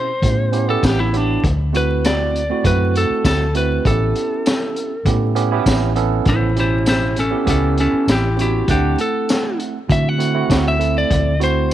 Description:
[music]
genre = straight-eighth soul blues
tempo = 99 BPM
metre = 4/4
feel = straight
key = A mixolydian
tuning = A4 = 440 Hz
[part]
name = lightly driven lead guitar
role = melody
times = 0.0-11.7 s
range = C#4 to F#5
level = -20 LUFS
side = left 1 dB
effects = none
[part]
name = bright tine electric piano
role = accompaniment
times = 0.0-11.7 s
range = B2 to F#5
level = -22 LUFS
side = right 9 dB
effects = none
[part]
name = vintage muted fingered electric bass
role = bass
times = 0.2-11.7 s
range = A1 to D3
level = -19 LUFS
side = equal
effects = none
[part]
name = crunchy breakbeat drum kit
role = drums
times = 0.2-11.7 s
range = hi-hat, kick drum, snare drum, tambourine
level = -21 LUFS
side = left 1 dB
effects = none
[sound]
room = small room ambience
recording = 1960s-style stereo, vinyl crackle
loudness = -15 LUFS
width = side -12 dB against mid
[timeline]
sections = 0.0-11.7 A section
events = lead electric guitar solo 0.0-11.7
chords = 0.0 A7; 1.4 D7; 3.9 A7; 8.7 D7

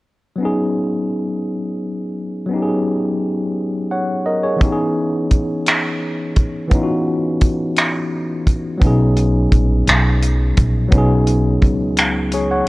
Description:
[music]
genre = slow six-eight R&B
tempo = 57 BPM (dotted quarters)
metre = 6/8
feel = straight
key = B major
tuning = A4 = 442 Hz
[part]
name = tine electric piano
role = accompaniment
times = 0.4-12.7 s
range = E3 to F#5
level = -18 LUFS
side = left 1 dB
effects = medium stereo tremolo
[part]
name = damped 70s drum kit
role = drums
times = 4.6-12.5 s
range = finger snaps, hi-hat, kick drum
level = -16 LUFS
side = equal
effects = none
[part]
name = upright bass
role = bass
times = 8.8-12.6 s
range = A#1 to C#2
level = -16 LUFS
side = equal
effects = none
[sound]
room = small room ambience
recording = worn, warbling old tape, cassette tape, warbly pitch drift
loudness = -15 LUFS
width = side -20 dB against mid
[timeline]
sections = 0.4-8.8 A section; 8.8-12.7 B section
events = none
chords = 0.4 B69; 4.6 C#m9; 8.8 B69

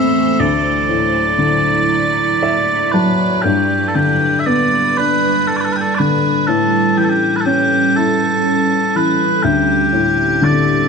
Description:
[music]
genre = celtic folk, Celtic slow air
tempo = 40 BPM (dotted quarters)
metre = 6/8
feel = rubato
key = G major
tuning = A4 = 440 Hz
[part]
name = mellow small bagpipes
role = melody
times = 0.0-10.9 s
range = G4 to E5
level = -16 LUFS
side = right 1 dB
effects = none
[part]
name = warm upright piano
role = accompaniment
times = 0.0-10.9 s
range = D2 to A5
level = -17 LUFS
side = left 3 dB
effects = none
[part]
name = icy glass pad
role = sustained chords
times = 0.0-10.9 s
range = D3 to D5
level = -19 LUFS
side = right 4 dB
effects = chorus, built-in reverb
[sound]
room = moderate concert hall reverb, RT60 2.0 s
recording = close, detailed microphones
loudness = -12 LUFS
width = side -5 dB against mid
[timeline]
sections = 0.0-3.5 A section; 3.5-10.9 B section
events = upright piano fill 1.9-3.5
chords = 0.4 Dadd9; 3.5 G; 6.5 A7; 9.4 D7sus4

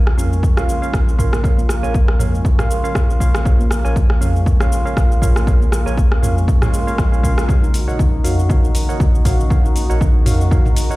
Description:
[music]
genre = afro house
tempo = 119 BPM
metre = 4/4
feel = swing 56% on 16ths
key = Bb minor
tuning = A4 = 438 Hz
[part]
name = warm analog pad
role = sustained chords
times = 0.0-11.0 s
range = Db3 to Bb4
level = -28 LUFS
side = left 1 dB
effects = chorus, sidechain pumping
[part]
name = handpan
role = arpeggios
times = 0.0-11.0 s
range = F3 to Eb5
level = -26 LUFS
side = equal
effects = sidechain pumping, low-pass filter, tape echo
[part]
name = smooth synth bass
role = bass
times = 0.0-10.7 s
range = Bb1 to F2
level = -20 LUFS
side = equal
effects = none
[part]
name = afro-pop drum kit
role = drums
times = 0.1-11.0 s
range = hi-hat, rim click, shaker, toms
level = -24 LUFS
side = equal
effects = none
[part]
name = tine electric piano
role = stabs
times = 0.2-11.0 s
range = Db4 to Ab5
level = -27 LUFS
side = right 3 dB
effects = medium stereo tremolo, sidechain pumping, tape echo
[part]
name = electronic kick drum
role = drums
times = 0.4-10.6 s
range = none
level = -15 LUFS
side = equal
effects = none
[sound]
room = digital ambience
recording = played on a big sound system in a bare room, large studio reverb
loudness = -13 LUFS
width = side -19 dB against mid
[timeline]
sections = 0.0-11.0 A section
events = build-up 0.0-11.0; filter sweep on handpan 0.0-11.0; drum fill 7.5-11.0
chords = 0.0 Bbm; 7.5 Ebm7/Bb

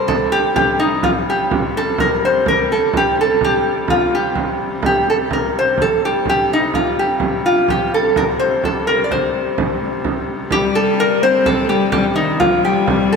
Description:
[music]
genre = medieval dance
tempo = 84 BPM (dotted quarters)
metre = 6/8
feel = straight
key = C dorian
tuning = A4 = 442 Hz
[part]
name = metal-body resonator slide guitar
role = melody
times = 0.0-13.2 s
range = Eb4 to D5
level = -16 LUFS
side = equal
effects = none
[part]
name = rich hurdy-gurdy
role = drone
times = 0.0-13.2 s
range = C3 to G3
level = -25 LUFS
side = left 1 dB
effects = none
[part]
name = frame drum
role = percussion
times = 0.1-13.1 s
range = none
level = -22 LUFS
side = right 4 dB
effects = none
[part]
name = clear viola da gamba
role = second line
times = 10.5-13.2 s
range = Eb3 to C4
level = -18 LUFS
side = left 5 dB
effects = none
[sound]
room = wet concert hall reverb, RT60 2.5 s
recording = none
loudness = -14 LUFS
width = side -5 dB against mid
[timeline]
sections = 0.0-10.5 A section; 10.5-13.2 A section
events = none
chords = none

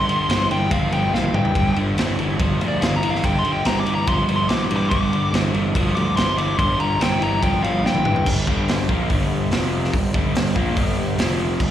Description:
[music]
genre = blues rock power trio and southern rock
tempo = 143 BPM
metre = 4/4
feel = straight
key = G minor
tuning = A4 = 441 Hz
[part]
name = dark smooth lead guitar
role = melody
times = 0.0-8.3 s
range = D5 to D6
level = -23 LUFS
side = left 1 dB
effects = overdrive, slapback echo
[part]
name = crunchy overdriven guitar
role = riff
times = 0.0-11.7 s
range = F2 to Bb3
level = -23 LUFS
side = equal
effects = slapback echo
[part]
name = fuzz picked electric bass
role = bass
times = 0.0-11.7 s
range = F1 to G2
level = -23 LUFS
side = equal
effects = overdrive
[part]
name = raw garage drum kit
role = drums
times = 0.1-11.7 s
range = crash cymbal, hi-hat, kick drum, ride cymbal, snare drum, toms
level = -23 LUFS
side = equal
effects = none
[sound]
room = little or no reverb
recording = live gig heard through the venue's PA, recital hall reverb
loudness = -17 LUFS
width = side -11 dB against mid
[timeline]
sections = 0.0-8.3 A section; 8.3-11.7 B section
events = lead electric guitar solo 0.0-8.3; drum fill 1.1-1.6, 7.8-8.3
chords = 0.0 G5; 8.3 Gm; 9.5 F5; 9.9 Gm; 11.2 F5

